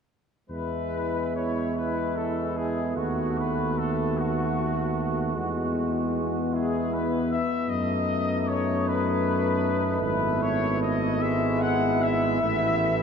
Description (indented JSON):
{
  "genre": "classical, hymn-like piece for brass band",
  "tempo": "50 BPM (dotted quarters)",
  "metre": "6/8",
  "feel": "rubato",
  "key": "E major",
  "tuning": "A4 = 440 Hz",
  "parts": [
    { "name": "clear trumpet section", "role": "melody", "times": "0.5-13.0 s", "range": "F#4 to F#5", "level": "-30 LUFS", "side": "left 6 dB", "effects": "none" },
    { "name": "warm flugelhorn", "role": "second line", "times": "0.5-13.0 s", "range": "D#4 to F#4", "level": "-31 LUFS", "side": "right 5 dB", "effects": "none" },
    { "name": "bright trombone", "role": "accompaniment", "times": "0.5-13.0 s", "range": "E3 to A3", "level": "-32 LUFS", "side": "right 3 dB", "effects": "none" },
    { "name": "mellow euphonium", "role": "accompaniment", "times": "0.5-13.0 s", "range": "A3 to B3", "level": "-31 LUFS", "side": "left 3 dB", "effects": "none" },
    { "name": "mellow tuba", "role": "bass", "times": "0.5-13.0 s", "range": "G#1 to F#2", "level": "-29 LUFS", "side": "right 1 dB", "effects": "none" }
  ],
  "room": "wet cathedral reverb, RT60 5.9 s",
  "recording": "dark, warm production",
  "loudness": "-24 LUFS",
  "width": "side -6 dB against mid",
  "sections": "0.5-13.0 A section",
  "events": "none",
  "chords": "0.5 E; 3.0 B7/D#; 5.4 E; 7.7 B7/F#; 10.0 E/G#; 12.4 A5"
}